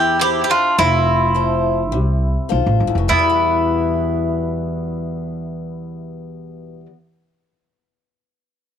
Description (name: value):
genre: greek folk, Greek bouzouki band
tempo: 104 BPM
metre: 4/4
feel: straight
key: E phrygian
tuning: A4 = 440 Hz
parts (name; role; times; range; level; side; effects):
- Greek bouzouki; melody; 0.0-6.9 s; E4 to G4; -18 LUFS; equal; none
- bowl-back mandolin; second line; 0.0-6.9 s; B3 to E4; -24 LUFS; right 11 dB; none
- picked old ladder-braced acoustic guitar; accompaniment; 0.0-7.0 s; E2 to E5; -24 LUFS; left 12 dB; none
- upright bass; bass; 0.0-6.9 s; F1 to E2; -21 LUFS; right 1 dB; none
room: moderate spring reverb, RT60 1.1 s, studio ambience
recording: 1960s-style stereo with parts hard left and right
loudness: -15 LUFS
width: side -8 dB against mid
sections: 0.0-3.1 A section; 3.1-5.4 B section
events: none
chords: 0.0 Am; 0.8 F; 3.1 Em